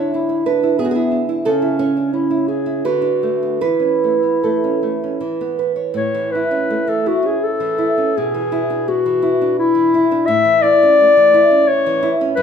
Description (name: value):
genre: romantic duo for clarinet and classical guitar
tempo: 74-92 BPM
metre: 3/4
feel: rubato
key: A major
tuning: A4 = 440 Hz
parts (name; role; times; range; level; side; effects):
- mellow clarinet; melody; 0.0-12.4 s; B3 to E5; -16 LUFS; left 3 dB; none
- nylon-string guitar; accompaniment; 0.0-12.4 s; F#2 to C#5; -18 LUFS; right 5 dB; none
room: moderate large studio reverb, RT60 1.2 s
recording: band playing live in one room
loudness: -14 LUFS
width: side -7 dB against mid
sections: 0.0-6.0 A section; 6.0-12.4 B section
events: none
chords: 0.0 Dmaj7sus2; 1.5 C#m; 2.9 Bm7/D; 3.6 A/E; 5.2 E5; 6.0 A; 8.2 E7/B; 10.3 A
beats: 0.14 0.80 | 1.47 2.15 2.86 | 3.62 4.42 5.20 | 5.96 6.70 7.42 | 8.16 8.87 9.59 | 10.29 10.99 11.70 | 12.38